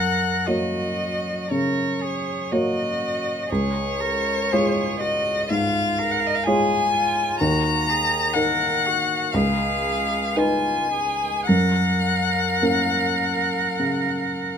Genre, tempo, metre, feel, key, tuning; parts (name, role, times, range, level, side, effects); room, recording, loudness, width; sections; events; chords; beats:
classical, slow romantic movement for piano quartet; 52-64 BPM; 4/4; rubato; F# major; A4 = 436 Hz
rich violin; melody; 0.0-14.6 s; C#5 to A#5; -23 LUFS; left 4 dB
rich cello; second line; 0.0-14.6 s; E#4 to A#4; -27 LUFS; right 9 dB
warm grand piano; accompaniment; 0.0-14.6 s; C#2 to C#5; -24 LUFS; equal
light reverb; close, detailed microphones; -20 LUFS; side -7 dB against mid
0.0-14.6 A section
0.0 F#; 3.5 C#; 7.4 D#m; 9.3 C#9; 11.5 F#
0.48 1.51 2.51 | 3.50 4.50 5.50 6.46 | 7.40 8.36 9.35 10.37 | 11.48 12.64 13.79